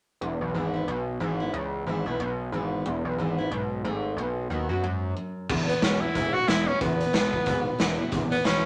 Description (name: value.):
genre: rockabilly.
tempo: 182 BPM.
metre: 4/4.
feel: swing 58% on 8ths.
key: E major.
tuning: A4 = 439 Hz.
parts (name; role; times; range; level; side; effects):
picked steel-string acoustic guitar; accompaniment; 0.2-8.7 s; E2 to F#4; -34 LUFS; equal; none.
gritty driven synth bass; bass; 0.2-8.7 s; E1 to F#2; -32 LUFS; equal; none.
raw garage drum kit; drums; 5.5-8.5 s; crash cymbal, hi-hat, kick drum, snare drum; -29 LUFS; equal; none.
bright tenor saxophone; melody; 5.7-8.7 s; B3 to F#4; -28 LUFS; equal; none.
room: moderate studio reverb, RT60 0.8 s.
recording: none.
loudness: -27 LUFS.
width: mono.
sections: 0.2-5.5 A section; 5.5-8.7 B section.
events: break 5.2-5.5.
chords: 0.2 E; 4.2 B7; 5.5 E.